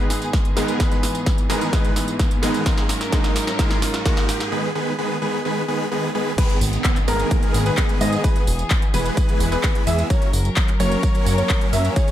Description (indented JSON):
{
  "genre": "EDM, festival progressive house",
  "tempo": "129 BPM",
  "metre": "4/4",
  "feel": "straight",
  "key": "G# minor",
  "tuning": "A4 = 440 Hz",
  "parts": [
    { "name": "bright grand piano", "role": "accompaniment", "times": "0.0-4.5 s", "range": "G#2 to B4", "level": "-26 LUFS", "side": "right 2 dB", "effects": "sidechain pumping, digital delay" },
    { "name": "dark chamber string section", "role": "sustained chords", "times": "0.0-12.1 s", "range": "D#3 to A#4", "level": "-29 LUFS", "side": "left 1 dB", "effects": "sidechain pumping" },
    { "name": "big supersaw lead", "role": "riff", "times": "0.0-12.1 s", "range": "D#3 to E5", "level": "-25 LUFS", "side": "equal", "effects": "sidechain pumping, low-pass filter, digital delay" },
    { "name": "riser and downlifter", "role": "sound effects", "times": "1.0-10.1 s", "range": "none", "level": "-32 LUFS", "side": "right 1 dB", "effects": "none" },
    { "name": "big-room dance drum kit", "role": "drums", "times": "0.1-12.1 s", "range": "crash cymbal, handclaps, hi-hat, snare drum, tambourine, toms", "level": "-27 LUFS", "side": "equal", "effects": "high-pass filter on snare, high-pass filter on hats, high-pass filter on perc, high-pass filter on toms, high-pass filter on cymbals, high-pass filter on room" },
    { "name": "electronic kick drum", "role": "drums", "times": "0.3-12.1 s", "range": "none", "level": "-20 LUFS", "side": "equal", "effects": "overdrive" },
    { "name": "clear grand piano", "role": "arpeggios", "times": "6.4-12.1 s", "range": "A#4 to E5", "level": "-27 LUFS", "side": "equal", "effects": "sidechain pumping, digital delay" },
    { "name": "fat analog bass", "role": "bass", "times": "6.6-11.9 s", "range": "E1 to G#2", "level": "-21 LUFS", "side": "equal", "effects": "sidechain pumping" }
  ],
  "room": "light reverb",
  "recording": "none",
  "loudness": "-18 LUFS",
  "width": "side -12 dB against mid",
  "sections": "0.0-6.4 A section; 6.4-12.1 B section",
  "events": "build-up 0.0-6.4; drum fill 0.0-4.5, 5.9-6.4; riser 1.0-4.5; break 4.5-6.4; drop 6.4-12.1",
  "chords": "0.0 G#m; 0.8 E; 2.7 F#; 4.5 G#m/D#; 6.4 G#m; 8.2 E; 10.1 F#",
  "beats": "0.33 | 0.80 1.26 1.73 2.19 | 2.66 3.12 3.59 4.05 | 4.52 4.99 5.45 5.92 | 6.38 6.85 7.31 7.78 | 8.24 8.71 9.17 9.64 | 10.10 10.57 11.03 11.50 | 11.96"
}